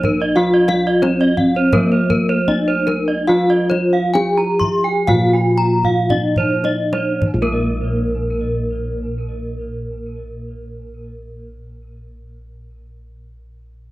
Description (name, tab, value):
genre	Balinese gamelan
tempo	51-93 BPM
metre	4/4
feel	straight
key	Bb slendro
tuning	A4 = 440 Hz
part	gamelan-type bronze metallophone	melody	0.0-11.5 s	Bb3 to Ab4-45c	-19 LUFS	equal	tape echo
part	gamelan-type bronze metallophone	accompaniment	0.0-11.5 s	F3+25c to Bb3	-25 LUFS	right 2 dB	none
part	gamelan-type bronze metallophone	arpeggios	0.0-11.5 s	Bb4 to C6+30c	-23 LUFS	left 3 dB	plate reverb, tape echo
part	gamelan-type bronze metallophone	arpeggios	0.0-11.5 s	Bb4 to Bb5	-23 LUFS	right 4 dB	plate reverb, tape echo
part	gamelan-type bossed gongs	bass	0.0-11.4 s	Bb1 to F4+25c	-23 LUFS	equal	none
part	kendang	percussion	0.0-7.8 s	none	-22 LUFS	equal	none
room	moderate studio reverb, RT60 0.6 s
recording	cassette tape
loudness	-14 LUFS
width	side -17 dB against mid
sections	0.0-7.2 A section; 7.2-11.9 B section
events	slowing down 0.4-7.2; drum fill 5.8-7.2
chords	none